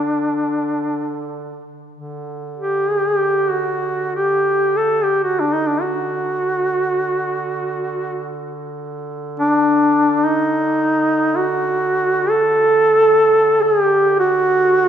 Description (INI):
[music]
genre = caucasian folk, Caucasian lament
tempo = free time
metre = none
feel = none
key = D major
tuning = A4 = 441 Hz
[part]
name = mellow duduk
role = melody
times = 0.0-14.9 s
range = D4 to A4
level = -15 LUFS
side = equal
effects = none
[part]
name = mellow duduk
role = drone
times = 0.0-14.9 s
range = D3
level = -28 LUFS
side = right 3 dB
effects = none
[sound]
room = moderate church reverb, RT60 2.8 s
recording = minimal, uncompressed stereo recording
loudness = -15 LUFS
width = side -9 dB against mid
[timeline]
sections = 0.0-1.9 A section; 1.9-14.9 A section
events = slowing down 11.5-14.9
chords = none